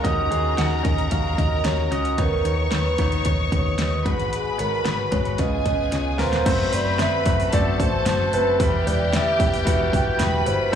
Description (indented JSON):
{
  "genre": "piano-driven pop",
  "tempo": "112 BPM",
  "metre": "4/4",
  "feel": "straight",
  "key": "Eb minor, E minor from 6.5 s",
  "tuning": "A4 = 440 Hz",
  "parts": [
    { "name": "clear studio violin section", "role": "second line", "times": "0.0-10.8 s", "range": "G4 to C#6", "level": "-28 LUFS", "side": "left 2 dB", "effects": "slapback echo" },
    { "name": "clear concert grand piano", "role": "accompaniment", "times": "0.0-10.8 s", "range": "Ab2 to Gb5", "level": "-25 LUFS", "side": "equal", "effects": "slapback echo" },
    { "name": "fingered electric bass", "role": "bass", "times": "0.0-10.7 s", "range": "Eb1 to Eb2", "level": "-25 LUFS", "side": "equal", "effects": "none" },
    { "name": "pop drum kit", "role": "drums", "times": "0.0-10.8 s", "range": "crash cymbal, hi-hat, kick drum, snare drum", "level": "-24 LUFS", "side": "equal", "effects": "none" },
    { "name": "mellow horn-like synth lead", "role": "melody", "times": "0.8-10.8 s", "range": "Ab4 to G5", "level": "-26 LUFS", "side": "right 1 dB", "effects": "chorus, slapback echo, digital delay" }
  ],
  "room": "light reverb",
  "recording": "live gig heard through the venue's PA, club reverb",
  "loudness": "-19 LUFS",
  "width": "side -8 dB against mid",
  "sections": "0.0-6.5 A section; 6.5-10.8 B section",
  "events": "drum fill 5.9-6.5",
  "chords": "0.0 Ebm7; 2.2 Badd9/D#; 4.1 Abm7; 5.4 Db7; 6.5 F#dim; 8.6 Em",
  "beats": "| 0.04 0.57 1.11 1.65 | 2.18 2.72 3.25 3.79 | 4.32 4.86 5.39 5.93 | 6.46 7.00 7.53 8.06 | 8.60 9.13 9.67 10.20 | 10.73"
}